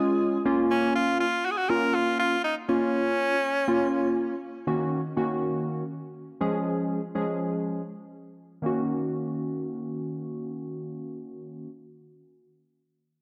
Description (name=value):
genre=pop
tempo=121 BPM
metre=4/4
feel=straight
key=Eb minor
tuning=A4 = 439 Hz
part: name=edgy tenor saxophone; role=melody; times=0.0-4.1 s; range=Db4 to Bb4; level=-29 LUFS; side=equal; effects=tape echo
part: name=warm analog keys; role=accompaniment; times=0.0-11.7 s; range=Eb3 to Ab4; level=-29 LUFS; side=equal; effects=chorus, low-pass filter
room=wet lush hall reverb, RT60 2.2 s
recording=dark, warm production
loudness=-27 LUFS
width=mono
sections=0.0-4.7 A section; 4.7-8.6 B section; 8.6-12.6 C section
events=filter sweep on synth keys 4.7-8.6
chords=0.5 Bbm; 4.7 Ebm7; 6.4 Db; 8.6 Ebm7